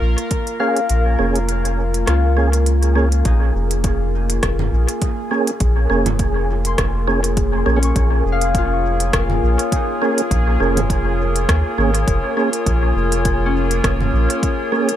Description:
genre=ambient dub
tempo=102 BPM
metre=4/4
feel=swing 56% on 16ths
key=Bb minor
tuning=A4 = 437 Hz
part: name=warbly tape-like pad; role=sustained chords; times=0.0-15.0 s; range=Bb3 to F5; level=-24 LUFS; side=equal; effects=chorus, built-in reverb
part: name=Celtic harp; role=arpeggios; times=0.0-15.0 s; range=Db4 to Db6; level=-27 LUFS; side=left 6 dB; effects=dub echo
part: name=soft dub sub bass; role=bass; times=0.0-14.3 s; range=F1 to Eb2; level=-18 LUFS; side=equal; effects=tube saturation
part: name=bubbling stepped-filter texture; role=texture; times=0.0-15.0 s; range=Ab4 to Bb4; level=-27 LUFS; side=left 1 dB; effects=chorus, built-in reverb
part: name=organic electronic drum kit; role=drums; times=0.2-15.0 s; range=congas, hi-hat, rim click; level=-25 LUFS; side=right 1 dB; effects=overdrive, dub echo
part: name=electronic kick drum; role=drums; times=0.3-14.6 s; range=none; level=-21 LUFS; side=equal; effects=overdrive
part: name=percussive tonewheel organ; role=stabs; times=0.6-14.9 s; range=Bb3 to Ab4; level=-22 LUFS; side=right 3 dB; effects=chorus vibrato, fast rotary speaker, dub echo
room=light reverb, digital ambience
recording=none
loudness=-15 LUFS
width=side -11 dB against mid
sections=0.0-3.3 A section; 3.3-15.0 B section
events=kick drops out 0.9-3.3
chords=0.0 Bbm7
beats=0.31 | 0.90 1.49 2.08 2.66 | 3.25 3.84 4.43 5.02 | 5.61 6.19 6.78 7.37 | 7.96 8.55 9.13 9.72 | 10.31 10.90 11.49 12.07 | 12.66 13.25 13.84 14.43

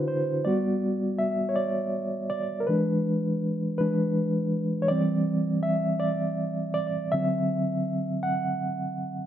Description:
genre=R&B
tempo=54 BPM (dotted quarters)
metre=6/8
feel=straight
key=G major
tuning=A4 = 440 Hz
part: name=mellow reed electric piano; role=solo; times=0.0-9.3 s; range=D3 to F#5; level=-24 LUFS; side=equal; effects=fast tremolo, slapback echo
room=moderate studio ambience, RT60 0.4 s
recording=none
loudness=-24 LUFS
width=side -10 dB against mid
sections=0.5-9.3 A section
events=reed electric piano solo 0.5-9.3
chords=0.5 Gmaj7; 2.7 E7; 4.9 Cadd9/E; 7.1 D9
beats=| 0.46 1.57 | 2.68 3.79 | 4.90 6.01 | 7.13 8.24

